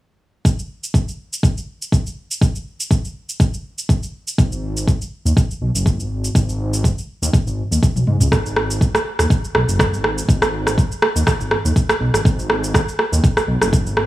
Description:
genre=afro house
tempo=122 BPM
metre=4/4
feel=swing 54% on 16ths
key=G# minor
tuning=A4 = 439 Hz
part: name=afro-pop drum kit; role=drums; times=0.5-14.1 s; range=rim click, shaker, toms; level=-20 LUFS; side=right 1 dB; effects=none
part: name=electronic kick drum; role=drums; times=0.5-13.8 s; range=none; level=-16 LUFS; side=equal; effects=none
part: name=dark detuned saw bass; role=bass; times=4.4-14.1 s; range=F#1 to G#2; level=-20 LUFS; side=equal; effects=tube saturation, sidechain pumping
room=digital ambience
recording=small room ambience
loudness=-16 LUFS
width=side -16 dB against mid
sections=0.4-8.3 A section; 8.3-14.1 B section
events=drum fill 7.9-8.3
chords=none

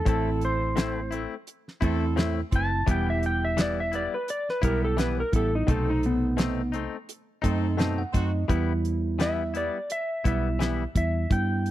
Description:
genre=straight-eighth soul blues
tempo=85 BPM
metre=4/4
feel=swing 55% on 16ths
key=E harmonic minor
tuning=A4 = 439 Hz
part: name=clean lap steel guitar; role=melody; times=0.0-11.7 s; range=B3 to A5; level=-29 LUFS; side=equal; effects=slapback echo
part: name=mellow horn section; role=sustained chords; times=0.0-8.3 s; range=B3 to C5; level=-38 LUFS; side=equal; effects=none
part: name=bell-like tine electric piano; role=accompaniment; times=0.1-11.7 s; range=C3 to A5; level=-30 LUFS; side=right 5 dB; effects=none
part: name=direct-recorded clean electric guitar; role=stabs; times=0.1-10.8 s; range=A2 to E4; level=-32 LUFS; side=left 7 dB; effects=none
part: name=vintage muted fingered electric bass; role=bass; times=0.1-11.7 s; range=E1 to G2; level=-28 LUFS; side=equal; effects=none
part: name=damped 70s drum kit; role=drums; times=0.1-11.7 s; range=hi-hat, kick drum, snare drum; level=-26 LUFS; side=equal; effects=none
room=studio reverb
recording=dry, close 1970s-style studio recording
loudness=-24 LUFS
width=side -14 dB against mid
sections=0.0-8.5 A section; 8.5-11.7 B section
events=electric slide guitar solo 0.0-8.5; tine electric piano fill 7.4-8.5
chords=0.1 Am; 2.9 Em; 5.7 B7b9; 8.5 Em

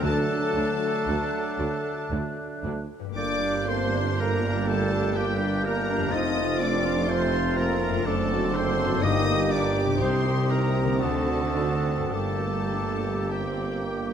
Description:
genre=classical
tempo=50-63 BPM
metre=3/4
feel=rubato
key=G minor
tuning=A4 = 439 Hz
part: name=bright symphonic violin section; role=melody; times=0.0-14.1 s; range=G5 to Eb6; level=-35 LUFS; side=left 4 dB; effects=none
part: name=clear clarinet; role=second line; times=0.0-14.1 s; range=G4 to Eb5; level=-34 LUFS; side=left 2 dB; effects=none
part: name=clear oboe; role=second line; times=0.0-14.1 s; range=G4 to Eb5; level=-36 LUFS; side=right 1 dB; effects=none
part: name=mellow hollow silver concert flute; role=second line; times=0.0-14.1 s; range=D6 to A6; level=-35 LUFS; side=left 2 dB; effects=none
part: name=warm symphonic violin section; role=second line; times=0.0-14.1 s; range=G4 to Eb5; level=-38 LUFS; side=left 3 dB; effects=none
part: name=warm studio viola section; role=accompaniment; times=0.0-14.1 s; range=D3 to G4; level=-34 LUFS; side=right 2 dB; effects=none
part: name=dark French horn section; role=sustained chords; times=0.0-14.1 s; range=G3 to Eb4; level=-35 LUFS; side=left 5 dB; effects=none
part: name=concert harp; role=arpeggios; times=0.0-14.1 s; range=F2 to C5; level=-34 LUFS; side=left 12 dB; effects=none
part: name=clear trumpet section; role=stabs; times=0.0-14.1 s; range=D4 to A4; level=-34 LUFS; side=right 2 dB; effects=none
part: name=rich symphonic cello section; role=bass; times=0.0-14.1 s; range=D2 to D3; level=-34 LUFS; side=right 2 dB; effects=none
part: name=rich symphonic double bass section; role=bass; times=0.0-14.1 s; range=F1 to D2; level=-33 LUFS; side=right 3 dB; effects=none
part: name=warm tuba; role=bass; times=0.0-14.1 s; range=F1 to D2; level=-33 LUFS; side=right 4 dB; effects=none
part: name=timpani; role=percussion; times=0.0-1.6, 9.0-10.0 s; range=G2 to D3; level=-32 LUFS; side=left 3 dB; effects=none
part: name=mellow bassoon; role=accompaniment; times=0.1-14.1 s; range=A3 to C4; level=-35 LUFS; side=right 2 dB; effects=none
part: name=clear trombone section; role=sustained chords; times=0.1-14.1 s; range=Bb2 to C4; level=-34 LUFS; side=right 4 dB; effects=none
room=moderate scoring stage reverb, RT60 2.0 s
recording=none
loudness=-23 LUFS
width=side -8 dB against mid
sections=0.0-14.1 A section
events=none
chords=0.0 D; 3.2 Gm; 6.1 F; 8.1 D7/F#; 9.0 Gm; 10.0 Cm; 11.0 D7b9; 12.1 Gm

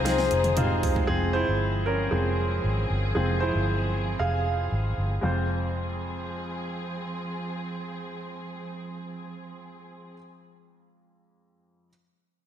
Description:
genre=piano-driven pop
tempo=116 BPM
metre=4/4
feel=straight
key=F minor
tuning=A4 = 440 Hz
part: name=clear upright piano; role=accompaniment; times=0.0-11.9 s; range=F2 to F5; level=-29 LUFS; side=right 1 dB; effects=slapback echo
part: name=muted studio string section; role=sustained chords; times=0.0-10.1 s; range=F3 to Ab4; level=-35 LUFS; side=equal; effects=none
part: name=vintage muted fingered electric bass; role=bass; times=0.0-10.1 s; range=F1 to C2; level=-27 LUFS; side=equal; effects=none
part: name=mellow horn-like synth lead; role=melody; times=0.1-1.0 s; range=C5 to F5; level=-28 LUFS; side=left 6 dB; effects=chorus, slapback echo, digital delay
part: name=pop drum kit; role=drums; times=0.1-1.1 s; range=hi-hat, snare drum, toms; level=-29 LUFS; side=equal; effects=none
room=moderate lush hall reverb, RT60 2.0 s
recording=big arena sound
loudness=-24 LUFS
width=side -10 dB against mid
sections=0.0-1.1 A section; 1.1-5.2 B section; 5.2-9.4 C section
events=drum fill 0.1-1.1; upright piano solo 1.1-5.2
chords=0.0 Fm7; 1.1 Fm

